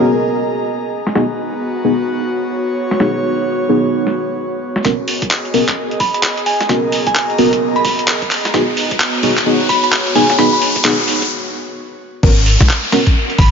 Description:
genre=UK garage, two-step garage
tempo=130 BPM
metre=4/4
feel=swing 62% on 16ths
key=G# minor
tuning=A4 = 439 Hz
part: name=deep mellow chord stab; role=stabs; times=0.0-13.0 s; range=B3 to A#4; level=-17 LUFS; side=equal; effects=chorus, diffuse ambient delay
part: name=airy breathy pad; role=texture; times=0.0-11.3 s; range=B3 to A#5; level=-21 LUFS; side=equal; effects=chorus, sidechain pumping
part: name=boom bap sampler-style drum kit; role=drums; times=1.1-13.5 s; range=crash cymbal, handclaps, hi-hat, snare drum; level=-18 LUFS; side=equal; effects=overdrive, high-pass filter on snare, low-pass filter on snare, high-pass filter on hats, low-pass filter on hats, high-pass filter on cymbals, low-pass filter on cymbals, high-pass filter on room, low-pass filter on room
part: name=electronic kick drum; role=drums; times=4.8-13.5 s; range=none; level=-16 LUFS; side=equal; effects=overdrive, high-pass filter on kick, high-pass filter on room
part: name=riser and downlifter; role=sound effects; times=6.6-13.5 s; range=none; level=-22 LUFS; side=left 1 dB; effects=none
part: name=glassy synth bell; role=melody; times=6.0-10.6, 13.4-13.5 s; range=G#5 to B5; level=-18 LUFS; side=equal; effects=chorus, low-pass filter, diffuse ambient delay
part: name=organ-like FM bass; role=bass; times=12.2-13.5 s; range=G#1 to B1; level=-12 LUFS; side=equal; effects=sidechain pumping
room=wet plate reverb, RT60 2.3 s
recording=dreamy mix soaked in reverb, nothing above 7.4 kHz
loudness=-13 LUFS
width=side -6 dB against mid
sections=0.0-4.8 A section; 4.8-12.2 B section; 12.2-13.5 C section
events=build-up 4.8-12.2; filter sweep on synth bell 4.8-12.2; riser 6.6-11.3; break 11.3-12.2; drop 12.2-13.5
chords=0.0 G#m11

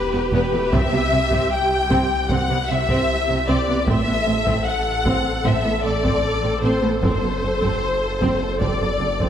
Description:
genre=cinematic, hybrid orchestral and electronic film score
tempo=76 BPM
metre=4/4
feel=straight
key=unclear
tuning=A4 = 440 Hz
part: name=clear symphonic violin section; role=melody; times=0.0-9.3 s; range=B4 to G5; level=-24 LUFS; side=left 4 dB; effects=none
part: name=warm symphonic violin section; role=second line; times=0.0-9.3 s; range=B4 to G5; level=-26 LUFS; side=left 2 dB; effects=none
part: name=warm symphonic viola section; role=accompaniment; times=0.0-9.3 s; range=A3 to A4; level=-24 LUFS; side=right 2 dB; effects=none
part: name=phased detuned saw bass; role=bass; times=0.0-9.3 s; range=E1 to C2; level=-28 LUFS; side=equal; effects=phaser
part: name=warm symphonic cello section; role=bass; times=0.1-9.3 s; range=E2 to C3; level=-26 LUFS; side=right 2 dB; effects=none
part: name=rich symphonic double bass section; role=bass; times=0.3-9.1 s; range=E1 to C2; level=-28 LUFS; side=right 3 dB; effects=none
part: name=solo taiko drums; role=drums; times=0.7-9.3 s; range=none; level=-26 LUFS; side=equal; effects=none
room=moderate concert hall reverb, RT60 2.0 s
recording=none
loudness=-18 LUFS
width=side -9 dB against mid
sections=0.0-9.3 A section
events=none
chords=0.0 Em; 0.7 C; 3.9 Am; 7.0 F#dim

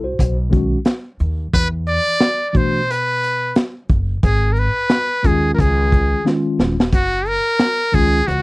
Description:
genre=hip hop, jazz-hop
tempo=89 BPM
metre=4/4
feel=swing 60% on 16ths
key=unclear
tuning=A4 = 440 Hz
part: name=mellow tine electric piano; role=accompaniment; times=0.0-8.2 s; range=D#3 to C5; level=-20 LUFS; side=left 1 dB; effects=medium stereo tremolo
part: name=upright bass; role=bass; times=0.0-8.4 s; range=D#1 to B2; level=-20 LUFS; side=equal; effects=none
part: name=crunchy breakbeat drum kit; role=drums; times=0.2-8.4 s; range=hi-hat, kick drum, shaker, snare drum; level=-18 LUFS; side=equal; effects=none
part: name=trumpet with metal mute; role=melody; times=1.5-8.4 s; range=F#4 to D5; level=-18 LUFS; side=equal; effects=none
room=little or no reverb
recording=dry, close 1970s-style studio recording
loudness=-15 LUFS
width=side -22 dB against mid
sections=0.0-8.4 A section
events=drum fill 6.3-6.9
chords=0.2 B; 1.5 Esus2; 4.2 G#m; 5.6 C#add9; 6.9 F#maj7

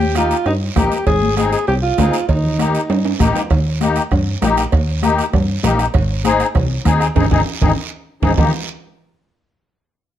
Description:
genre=latin, cumbia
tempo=197 BPM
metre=4/4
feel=straight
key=Eb major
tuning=A4 = 440 Hz
part: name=warm alto saxophone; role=melody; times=0.0-3.2 s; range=Eb4 to Ab4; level=-19 LUFS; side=right 1 dB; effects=plate reverb
part: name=plucky analog bass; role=bass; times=0.0-8.5 s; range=Ab1 to G2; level=-18 LUFS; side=equal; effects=none
part: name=congas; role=percussion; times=0.0-8.4 s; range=none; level=-23 LUFS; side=left 5 dB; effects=none
part: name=musette accordion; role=accompaniment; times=0.1-8.5 s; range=Bb3 to Ab4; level=-19 LUFS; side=left 5 dB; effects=none
part: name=cowbell and timbales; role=percussion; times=0.1-8.4 s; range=none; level=-27 LUFS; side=right 8 dB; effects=none
part: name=bombo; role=percussion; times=0.2-8.4 s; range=none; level=-18 LUFS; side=right 2 dB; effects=none
part: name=guiro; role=percussion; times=0.2-8.4 s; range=none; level=-31 LUFS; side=right 7 dB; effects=none
room=light reverb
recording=dark, warm production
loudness=-14 LUFS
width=side -11 dB against mid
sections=0.0-3.5 A section; 3.5-8.4 B section; 8.4-9.6 C section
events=drum fill 2.9-3.5, 7.8-8.4; band accent 7.2-8.4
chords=0.0 Eb; 1.1 Ab; 2.3 Eb; 5.9 Ab; 8.4 Eb

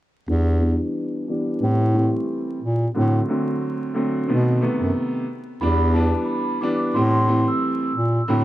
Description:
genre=hip hop, boom-bap hip-hop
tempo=90 BPM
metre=4/4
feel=swing 55% on 16ths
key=E minor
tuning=A4 = 440 Hz
part: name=clear upright piano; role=accompaniment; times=0.3-8.4 s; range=C3 to D4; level=-22 LUFS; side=equal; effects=cassette tape, high-pass filter, low-pass filter
part: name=mellow bass clarinet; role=bass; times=0.3-8.4 s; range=E2 to B2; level=-19 LUFS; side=equal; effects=none
part: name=vibraphone with soft mallets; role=melody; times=5.6-8.4 s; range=A5 to E6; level=-25 LUFS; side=right 1 dB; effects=high-pass filter, low-pass filter, tape echo
room=light reverb, studio ambience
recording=dark, warm production, vinyl crackle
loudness=-19 LUFS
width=side -14 dB against mid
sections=0.3-5.6 A section; 5.6-8.4 B section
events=filter sweep on upright piano 0.3-5.6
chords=0.3 Em7; 1.6 Am7; 3.0 D7/A; 4.3 B7b9; 5.6 Em7; 7.0 Am7

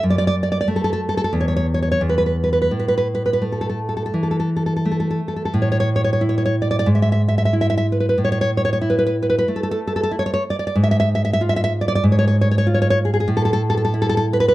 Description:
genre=romantic piece for solo classical guitar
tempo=84-98 BPM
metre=4/4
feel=rubato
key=A major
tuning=A4 = 440 Hz
part: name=nylon-string guitar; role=solo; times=0.0-14.5 s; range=E2 to E5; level=-16 LUFS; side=equal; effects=none
room=light reverb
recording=dark, warm production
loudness=-17 LUFS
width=side -16 dB against mid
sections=0.0-5.5 A section; 5.5-14.5 A section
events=none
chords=0.0 F#m; 1.3 N.C.; 2.7 A5; 6.9 E/G#; 8.2 A5; 10.8 E6b9/G#; 13.3 A5

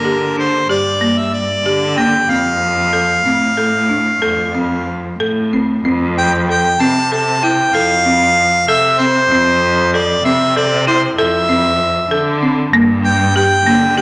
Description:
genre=contemporary instrumental, chamber music in an uneven meter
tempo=191 BPM (eighths)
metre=11/8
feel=straight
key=unclear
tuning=A4 = 440 Hz
part: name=clear harmonica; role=melody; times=0.0-14.0 s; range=Bb4 to A5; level=-17 LUFS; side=equal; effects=none
part: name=folk marimba with hard mallets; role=arpeggios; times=0.0-14.0 s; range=Bb3 to A4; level=-20 LUFS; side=equal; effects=none
part: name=rich cello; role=bass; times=0.0-14.0 s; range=F2 to D3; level=-22 LUFS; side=equal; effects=none
room=wet scoring stage reverb, RT60 1.8 s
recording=nothing above 10.3 kHz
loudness=-14 LUFS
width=mono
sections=0.0-5.9 A section; 5.9-14.0 B section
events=none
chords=0.0 Gm; 2.3 Dm7/F (rootless); 5.9 Fmaj7; 12.7 Gm

